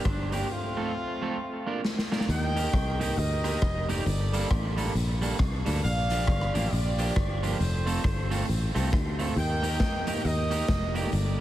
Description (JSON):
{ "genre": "ska", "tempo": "136 BPM", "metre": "4/4", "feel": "swing 61% on 8ths", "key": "unclear", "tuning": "A4 = 440 Hz", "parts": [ { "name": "clear horn section", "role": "melody", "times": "0.0-11.4 s", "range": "G3 to G5", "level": "-33 LUFS", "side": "right 1 dB", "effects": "dub echo" }, { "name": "electric guitar at the edge of break-up", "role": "accompaniment", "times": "0.1-11.1 s", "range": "F3 to Bb4", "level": "-33 LUFS", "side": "right 3 dB", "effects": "vibrato effect, dub echo" }, { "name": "fingered electric bass", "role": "bass", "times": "0.1-11.4 s", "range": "F1 to F2", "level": "-28 LUFS", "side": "equal", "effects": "none" }, { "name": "raw garage drum kit", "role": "drums", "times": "0.1-11.2 s", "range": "hi-hat, kick drum, rim click, snare drum", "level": "-30 LUFS", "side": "left 1 dB", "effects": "none" } ], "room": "light reverb", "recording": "heavily compressed radio sound", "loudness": "-25 LUFS", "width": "side -13 dB against mid", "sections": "0.0-2.3 A section; 2.3-11.4 B section", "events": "break 0.5-2.3; drum fill 1.8-2.3", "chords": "0.0 Gm; 0.5 F; 1.4 Bb; 2.3 Eb; 4.1 Gmadd9; 5.8 Bb6; 7.6 F; 9.4 Eb" }